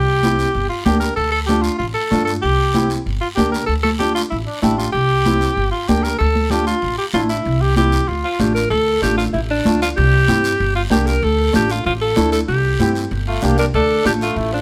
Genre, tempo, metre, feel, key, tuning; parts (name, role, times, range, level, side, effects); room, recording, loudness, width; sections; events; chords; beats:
latin, cumbia; 191 BPM; 4/4; straight; D minor; A4 = 440 Hz
breathy tenor saxophone; second line; 0.0-8.4, 13.3-14.6 s; F3 to Bb4; -22 LUFS; equal
upright bass; bass; 0.0-14.6 s; G1 to G2; -23 LUFS; equal
clear upright piano; accompaniment; 0.2-14.3 s; G3 to G4; -24 LUFS; equal
congas; percussion; 0.2-14.2 s; -24 LUFS; equal
guiro; percussion; 0.2-14.6 s; -33 LUFS; equal
bright alto saxophone; melody; 8.2-14.6 s; D4 to Bb4; -21 LUFS; equal; plate reverb, tape echo
light reverb; -17 LUFS; mono
0.0-8.7 A section; 8.7-14.6 B section
tenor saxophone solo 0.0-8.7
0.0 C; 0.5 Gm; 1.2 Dm; 2.4 C; 3.1 Gm; 3.7 Dm; 4.9 C; 5.6 Gm; 6.2 Dm; 7.5 C; 8.1 Dm; 10.0 C; 10.6 Gm; 11.2 Dm; 12.5 C; 13.1 Gm; 13.7 Dm
0.23 0.55 0.86 | 1.18 1.49 1.80 2.12 | 2.43 2.75 3.06 3.38 | 3.69 4.00 4.32 4.63 | 4.95 5.26 5.57 5.89 | 6.20 6.52 6.83 7.14 | 7.46 7.77 8.09 8.40 | 8.72 9.03 9.35 9.66 | 9.97 10.29 10.60 10.91 | 11.23 11.54 11.86 12.17 | 12.48 12.80 13.11 13.43 | 13.74 14.05 14.37